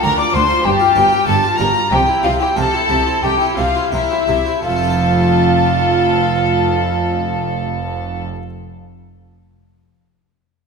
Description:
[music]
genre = classical, baroque-style concerto movement with solo episodes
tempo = 84-99 BPM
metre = 4/4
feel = straight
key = F major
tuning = A4 = 442 Hz
[part]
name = mellow hollow baroque flute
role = melody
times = 0.0-8.2 s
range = E5 to D6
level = -18 LUFS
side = equal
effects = none
[part]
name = rich chamber violin section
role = melody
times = 0.0-8.2 s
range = E5 to D6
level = -23 LUFS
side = left 2 dB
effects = none
[part]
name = rich chamber violin section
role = second line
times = 0.0-8.2 s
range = E4 to D5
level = -21 LUFS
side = left 5 dB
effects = none
[part]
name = harpsichord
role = accompaniment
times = 0.0-8.5 s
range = D2 to D5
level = -27 LUFS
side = left 1 dB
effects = none
[part]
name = warm chamber viola section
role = accompaniment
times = 0.0-8.2 s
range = D4 to G4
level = -22 LUFS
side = right 2 dB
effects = none
[part]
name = rich chamber double bass section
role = bass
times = 0.0-8.2 s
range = F1 to D2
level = -22 LUFS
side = right 4 dB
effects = none
[part]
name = warm chamber cello section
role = bass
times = 0.0-8.2 s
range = D2 to C3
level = -22 LUFS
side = equal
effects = none
[sound]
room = wet concert hall reverb, RT60 2.1 s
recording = minimal, uncompressed stereo recording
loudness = -13 LUFS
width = side -5 dB against mid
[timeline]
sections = 0.0-4.6 A section; 4.6-7.5 B section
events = slowing down 0.0-4.6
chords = 0.0 Dm; 0.7 Gm7; 1.9 C7; 4.6 F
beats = 0.04 0.65 1.28 | 1.92 2.56 3.23 3.92 | 4.63 5.34 6.05 6.76

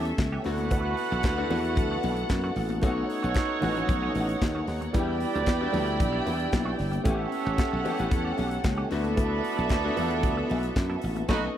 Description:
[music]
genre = disco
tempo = 114 BPM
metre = 4/4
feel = straight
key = unclear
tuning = A4 = 439 Hz
[part]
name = dark studio string section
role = second line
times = 0.0-11.5 s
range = A3 to G5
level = -32 LUFS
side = equal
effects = none
[part]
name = clean electric guitar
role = accompaniment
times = 0.0-11.5 s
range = D#3 to A4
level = -37 LUFS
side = right 4 dB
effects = wah
[part]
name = clear grand piano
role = accompaniment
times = 0.0-11.5 s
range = G3 to F#5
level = -34 LUFS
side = left 6 dB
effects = none
[part]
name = dark French horn section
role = sustained chords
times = 0.0-11.6 s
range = D3 to G4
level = -36 LUFS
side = right 1 dB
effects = none
[part]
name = clear horn section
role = stabs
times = 0.0-11.4 s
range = C#4 to E5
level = -34 LUFS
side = right 9 dB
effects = tape echo
[part]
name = slap bass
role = bass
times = 0.0-11.5 s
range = G1 to F#2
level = -30 LUFS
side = equal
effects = none
[part]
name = modern studio drum kit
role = drums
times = 0.1-11.5 s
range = crash cymbal, handclaps, hi-hat, kick drum, snare drum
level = -28 LUFS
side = equal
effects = none
[part]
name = congas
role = percussion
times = 0.2-11.3 s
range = none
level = -39 LUFS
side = left 6 dB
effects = none
[sound]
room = studio ambience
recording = dry, close 1970s-style studio recording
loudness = -24 LUFS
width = side -11 dB against mid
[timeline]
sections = 0.0-11.6 A section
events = grand piano fill 3.4-4.9; band accent 11.3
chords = 0.5 D69; 2.8 B9; 4.9 Em7; 7.1 A7; 8.9 D69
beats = 0.19 | 0.71 1.24 1.77 2.30 | 2.83 3.36 3.89 4.42 | 4.94 5.47 6.00 6.53 | 7.06 7.59 8.12 8.64 | 9.17 9.70 10.23 10.76 | 11.29

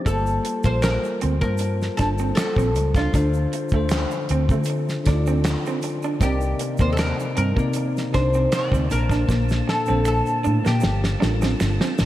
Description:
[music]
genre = R&B, neo-soul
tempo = 78 BPM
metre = 4/4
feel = swing 53% on 16ths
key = G minor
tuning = A4 = 441 Hz
[part]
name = bell-like tine electric piano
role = accompaniment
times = 0.0-12.1 s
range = Bb2 to A5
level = -27 LUFS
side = left 3 dB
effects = lush chorus
[part]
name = tonewheel organ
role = sustained chords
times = 0.0, 6.2-12.1 s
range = D3 to A5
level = -35 LUFS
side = equal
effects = overdrive, fast rotary speaker
[part]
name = oud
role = melody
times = 0.1-12.0 s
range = F4 to D5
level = -26 LUFS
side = equal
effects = slapback echo
[part]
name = electric guitar through a small old amp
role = second line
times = 0.1-12.0 s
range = G3 to D4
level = -29 LUFS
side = right 4 dB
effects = spring reverb
[part]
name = vintage muted fingered electric bass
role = bass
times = 0.1-12.1 s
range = G1 to D3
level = -22 LUFS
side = equal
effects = none
[part]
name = damped 70s drum kit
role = drums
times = 0.1-12.1 s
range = handclaps, hi-hat, kick drum, snare drum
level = -24 LUFS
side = equal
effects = none
[part]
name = egg shaker and finger snaps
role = percussion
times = 0.1-12.1 s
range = none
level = -40 LUFS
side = right 5 dB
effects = none
[sound]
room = moderate lush hall reverb, RT60 2.8 s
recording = big arena sound, vinyl crackle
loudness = -19 LUFS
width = side -14 dB against mid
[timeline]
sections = 0.1-12.1 A section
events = drum fill 9.3-12.1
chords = 0.1 Gm11; 3.1 Dm7; 6.2 Cm9; 8.9 Bbmaj7; 10.8 Gm9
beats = | 0.06 0.83 1.60 2.37 | 3.14 3.90 4.67 5.44 | 6.21 6.98 7.75 8.52 | 9.29 10.06 10.83 11.60

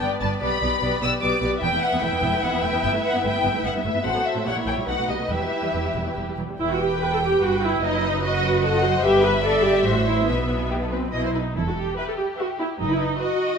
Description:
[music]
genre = quick classical-period movement for string orchestra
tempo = 147 BPM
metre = 3/4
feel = rubato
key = E minor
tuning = A4 = 440 Hz
[part]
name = warm symphonic violin section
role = melody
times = 0.0-13.6 s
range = G4 to E6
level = -26 LUFS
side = left 3 dB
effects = none
[part]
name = warm symphonic violin section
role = second line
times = 0.0-13.5 s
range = E4 to G5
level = -26 LUFS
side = left 2 dB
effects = none
[part]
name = warm symphonic viola section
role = accompaniment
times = 0.0-13.6 s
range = F#3 to B4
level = -24 LUFS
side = right 1 dB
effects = none
[part]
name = rich symphonic double bass section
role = bass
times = 0.0-13.1 s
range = E1 to B1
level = -30 LUFS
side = right 2 dB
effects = none
[part]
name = warm symphonic cello section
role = bass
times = 0.0-13.1 s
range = E2 to B2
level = -30 LUFS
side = right 3 dB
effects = none
[sound]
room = wet recital hall reverb, RT60 1.8 s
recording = minimal, uncompressed stereo recording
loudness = -20 LUFS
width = side -6 dB against mid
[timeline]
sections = 0.0-6.6 A section; 6.6-13.6 B section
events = none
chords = 0.4 G/B; 1.6 Em; 2.8 Em/G; 4.1 F#dim/A; 4.5 A#dim; 4.9 B7; 5.3 Em; 7.8 B/F#; 9.0 Em/G; 9.9 F#m7b5/A; 10.3 E5/B; 11.1 B; 11.6 Em; 12.8 B/F#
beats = 0.02 | 0.42 0.82 1.22 | 1.63 2.03 2.43 | 2.83 3.24 3.65 | 4.05 4.46 4.88 | 5.30 5.74 6.17 | 6.59 7.01 7.42 | 7.83 8.23 8.63 | 9.04 9.44 9.86 | 10.28 10.71 11.14 | 11.56 11.98 12.40 | 12.80 13.21

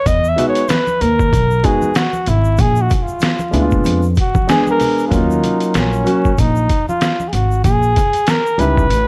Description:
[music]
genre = hip hop, jazz-hop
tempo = 95 BPM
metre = 4/4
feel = swing 57% on 16ths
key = Eb minor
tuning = A4 = 440 Hz
[part]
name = warm flugelhorn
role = melody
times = 0.0-9.1 s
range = Db4 to E5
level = -20 LUFS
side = equal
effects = none
[part]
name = upright bass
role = bass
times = 0.1-9.1 s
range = G#1 to F2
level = -19 LUFS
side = equal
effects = none
[part]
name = trip hop sampler-style drum kit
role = drums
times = 0.1-9.1 s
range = hi-hat, kick drum, snare drum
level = -20 LUFS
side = equal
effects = none
[part]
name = egg shaker and congas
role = percussion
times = 0.1-9.1 s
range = none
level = -31 LUFS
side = equal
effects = none
[part]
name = dark baby grand piano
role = accompaniment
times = 0.4-8.8 s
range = Gb3 to Ab4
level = -20 LUFS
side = equal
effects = none
[sound]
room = small room reverb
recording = dry, gritty hardware recording, vinyl crackle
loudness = -15 LUFS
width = mono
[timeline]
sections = 0.0-5.1 A section; 5.1-9.1 B section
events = flugelhorn solo 0.0-5.1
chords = 0.1 Emaj7; 2.6 Bb7b9 (rootless); 5.1 Ebm9; 7.6 Bbm7b5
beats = | 0.06 0.69 1.32 1.96 | 2.59 3.22 3.85 4.48 | 5.12 5.75 6.38 7.01 | 7.64 8.27 8.90

